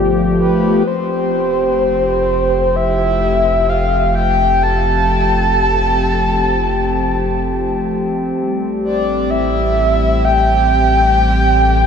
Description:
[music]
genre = ambient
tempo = free time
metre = none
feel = none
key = unclear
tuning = A4 = 437 Hz
[part]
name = warm analog pad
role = sustained chords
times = 0.0-11.9 s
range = F3 to A4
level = -19 LUFS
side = equal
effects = chorus
[part]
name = warm sub bass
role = bass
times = 0.0-11.9 s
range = F1 to A1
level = -19 LUFS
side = equal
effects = tube saturation
[part]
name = breathy flute-like synth lead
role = melody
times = 0.4-11.9 s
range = B4 to A5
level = -16 LUFS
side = equal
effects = wide subtle chorus, ping-pong delay
[part]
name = glass harmonica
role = texture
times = 0.9-11.9 s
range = G4 to G5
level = -22 LUFS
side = left 4 dB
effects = none
[sound]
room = wet cathedral reverb, RT60 5.7 s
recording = in a vast, echoing space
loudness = -13 LUFS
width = side -7 dB against mid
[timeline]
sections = 0.9-11.9 A section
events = fade-in on analog synth pad 0.9-11.9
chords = 0.0 G9; 0.9 Fmaj9; 8.4 Am7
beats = free time

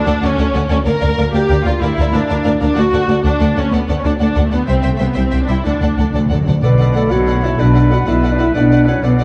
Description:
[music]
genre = cinematic, heroic adventure film score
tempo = 125 BPM (dotted quarters)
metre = 12/8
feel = straight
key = D major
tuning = A4 = 441 Hz
[part]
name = rich symphonic viola section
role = accompaniment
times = 0.0-9.2 s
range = A3 to Bb4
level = -22 LUFS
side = equal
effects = none
[part]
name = warm symphonic violin section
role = melody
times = 0.1-9.2 s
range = F5 to G5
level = -33 LUFS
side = equal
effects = none
[part]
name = clear studio violin section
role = second line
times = 0.1-9.2 s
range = A4 to E5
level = -27 LUFS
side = equal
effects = none
[part]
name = rich symphonic cello section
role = bass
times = 0.1-9.2 s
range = C2 to B2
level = -20 LUFS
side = equal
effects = none
[part]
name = warm symphonic double bass section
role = bass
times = 0.1-9.2 s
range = B1 to D2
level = -20 LUFS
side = equal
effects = none
[part]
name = timpani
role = percussion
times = 5.7-7.1 s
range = B2 to D3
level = -22 LUFS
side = equal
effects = none
[part]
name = clear clarinet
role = second line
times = 6.6-9.2 s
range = A4 to F#5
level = -26 LUFS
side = equal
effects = none
[part]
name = clear oboe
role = second line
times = 6.6-9.2 s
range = B4 to D5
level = -28 LUFS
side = equal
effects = none
[part]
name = silver concert flute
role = second line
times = 6.6-9.2 s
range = F#5 to B5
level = -28 LUFS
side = equal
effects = none
[part]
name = mellow French horn section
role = sustained chords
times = 6.6-9.2 s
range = A3 to F#4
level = -19 LUFS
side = equal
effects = none
[sound]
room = moderate scoring stage reverb, RT60 2.1 s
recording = dark, warm production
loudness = -15 LUFS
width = mono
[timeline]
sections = 0.0-6.6 A section; 6.6-9.2 B section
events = timpani fill 5.7-6.6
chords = 0.0 D; 0.9 Bb/D; 2.8 D; 4.7 C; 5.7 D; 6.6 Bm7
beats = 0.38 | 0.86 1.34 1.81 2.29 | 2.77 3.25 3.73 4.21 | 4.69 5.17 5.66 6.15 | 6.64 7.12 7.60 8.07 | 8.55 9.03

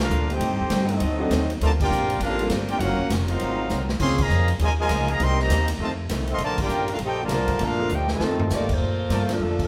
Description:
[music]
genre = jazz, big band swing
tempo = 200 BPM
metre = 4/4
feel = swing 63% on 8ths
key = Bb major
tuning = A4 = 440 Hz
[part]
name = clear trumpet section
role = melody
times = 0.0-8.7 s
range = C4 to C6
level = -29 LUFS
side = equal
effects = none
[part]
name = clear trombone section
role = second line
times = 0.0-8.7 s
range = Bb2 to G4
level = -32 LUFS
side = equal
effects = none
[part]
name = upright bass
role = bass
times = 0.0-9.7 s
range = F1 to Bb2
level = -27 LUFS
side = equal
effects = none
[part]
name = swinging big-band drum kit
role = drums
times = 0.0-9.6 s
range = crash cymbal, hi-hat, kick drum, ride cymbal, snare drum, toms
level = -31 LUFS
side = equal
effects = none
[part]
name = picked swing-style acoustic guitar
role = accompaniment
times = 0.1-9.6 s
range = F2 to Bb4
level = -37 LUFS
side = equal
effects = none
[part]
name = warm baby grand piano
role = accompaniment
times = 1.2-9.7 s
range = F3 to Bb4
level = -32 LUFS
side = equal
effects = none
[part]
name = warm saxophone section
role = melody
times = 8.5-9.7 s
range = F3 to D5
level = -29 LUFS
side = equal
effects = none
[part]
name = warm trumpet section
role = stabs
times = 9.1-9.2 s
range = F4 to A5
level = -38 LUFS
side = equal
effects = none
[sound]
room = moderate large studio reverb, RT60 1.4 s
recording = band playing live in one room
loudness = -23 LUFS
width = mono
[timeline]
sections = 0.0-8.8 A section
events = band accent 1.8, 4.2, 6.6; drum fill 3.7, 7.9-8.5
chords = 0.4 Am7b5; 1.0 D7b9; 1.6 Gm11; 2.8 Ebm9; 3.4 Ab13; 4.0 Db69; 5.2 Cm7; 5.8 F7; 6.4 Bbmaj7; 8.2 F7; 8.8 Bbmaj7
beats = 0.11 | 0.41 0.71 1.01 1.31 | 1.61 1.91 2.21 2.51 | 2.81 3.11 3.41 3.71 | 4.00 4.30 4.60 4.90 | 5.20 5.50 5.80 6.10 | 6.40 6.70 7.00 7.30 | 7.60 7.90 8.20 8.50 | 8.80 9.11 9.41

